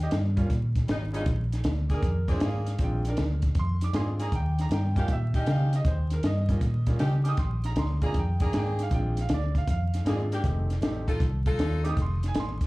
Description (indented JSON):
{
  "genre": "electric blues shuffle",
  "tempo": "157 BPM",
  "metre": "4/4",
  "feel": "swing 67% on 8ths",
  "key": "Bb mixolydian",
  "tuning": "A4 = 440 Hz",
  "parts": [
    { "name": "clear upright piano", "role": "accompaniment", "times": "0.0-12.6 s", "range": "G3 to Eb6", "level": "-35 LUFS", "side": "right 2 dB", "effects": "slapback echo" },
    { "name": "vintage muted fingered electric bass", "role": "bass", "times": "0.0-12.7 s", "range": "F1 to Db3", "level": "-27 LUFS", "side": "equal", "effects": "none" },
    { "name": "compact cocktail drum kit", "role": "drums", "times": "0.0-12.7 s", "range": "hi-hat, kick drum, snare drum", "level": "-29 LUFS", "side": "equal", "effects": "none" },
    { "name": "edgy saxophone section", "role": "stabs", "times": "0.9-11.9 s", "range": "G3 to A4", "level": "-36 LUFS", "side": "left 1 dB", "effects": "slapback echo, analog delay" }
  ],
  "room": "little or no reverb",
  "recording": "live gig heard through the venue's PA, club reverb, vinyl crackle",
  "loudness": "-24 LUFS",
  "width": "side -20 dB against mid",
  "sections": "0.0-12.7 A section",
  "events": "none",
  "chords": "0.0 Eb7; 1.3 Bb7; 4.3 Eb7; 7.4 Bb7; 10.4 F7"
}